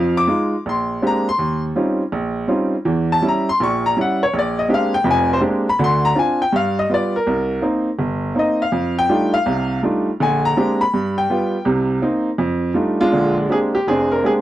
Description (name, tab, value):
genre	solo jazz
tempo	163 BPM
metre	4/4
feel	swing 66% on 8ths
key	Bb mixolydian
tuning	A4 = 439 Hz
part	clear upright piano	solo	0.0-14.4 s	F1 to D6	-16 LUFS	equal	none
room	light reverb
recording	dry, close 1970s-style studio recording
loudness	-16 LUFS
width	side -14 dB against mid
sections	0.0-13.1 A section; 13.1-14.4 B section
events	upright piano solo 0.0-13.1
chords	0.0 Fm7; 0.6 Bb13; 1.4 Eb13; 2.9 Edim7; 4.3 Bb13; 5.8 Dm7b5; 6.5 G7; 7.3 Cm7; 8.7 F13; 10.2 Bb13; 10.9 G7; 11.7 Cm7; 12.4 F13; 13.1 Bb13